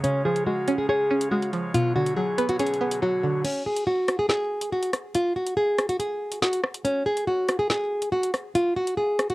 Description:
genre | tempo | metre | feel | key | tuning
hip hop, drill | 141 BPM | 4/4 | half-time | unclear | A4 = 439 Hz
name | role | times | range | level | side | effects
nylon-string guitar | melody | 0.0-9.3 s | C#4 to G#4 | -24 LUFS | equal | low-pass filter
string-like resonator pluck | accompaniment | 0.0-3.4 s | B2 to C#5 | -26 LUFS | right 1 dB | chorus, phaser, low-pass filter, cassette tape
pipe organ, soft reed | sustained chords | 0.0-3.4 s | B2 to E#5 | -36 LUFS | equal | low-pass filter, cassette tape
drill drum kit | drums | 0.0-9.3 s | crash cymbal, hi-hat, rim click, snare drum | -28 LUFS | equal | cassette tape
room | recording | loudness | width
moderate small room reverb, RT60 0.5 s | home recording on cassette | -22 LUFS | side -19 dB against mid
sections
0.0-3.4 A section; 3.4-9.3 B section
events
drums muted 3.0-3.4; kick muted 3.4-9.3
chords
0.0 C#; 1.7 Bmadd9; 3.4 N.C.

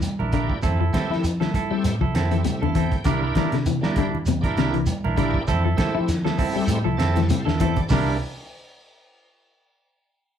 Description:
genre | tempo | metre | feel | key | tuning
afrobeat | 99 BPM | 4/4 | swing 55% on 16ths | C mixolydian | A4 = 439 Hz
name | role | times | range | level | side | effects
electric guitar at the edge of break-up | arpeggios | 0.0-8.1 s | C3 to E4 | -26 LUFS | left 9 dB | none
cloth-damped thuddy drum kit | drums | 0.0-8.1 s | hi-hat, kick drum, snare drum | -26 LUFS | right 1 dB | none
congas | percussion | 0.0-8.1 s | none | -32 LUFS | right 2 dB | none
shekere | percussion | 0.0-8.1 s | none | -28 LUFS | right 2 dB | none
semi-hollow electric guitar | stabs | 0.2-8.2 s | G3 to Bb4 | -27 LUFS | right 6 dB | none
fingered electric bass | bass | 0.2-8.2 s | Bb1 to F3 | -25 LUFS | equal | none
bright tonewheel organ | accompaniment | 0.3-8.2 s | A3 to A5 | -32 LUFS | right 1 dB | slow rotary speaker, overdrive, chorus vibrato
room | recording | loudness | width
moderate large studio reverb, RT60 0.8 s | band playing live in one room | -20 LUFS | side -9 dB against mid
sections
0.0-7.9 A section; 7.9-10.3 B section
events
tonewheel organ fill 2.2-3.1, 6.7-7.9; drum fill 7.2-7.9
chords
0.0 C9 (rootless); 0.6 Fmaj7; 3.1 C9; 5.5 Fmaj7; 7.9 C9

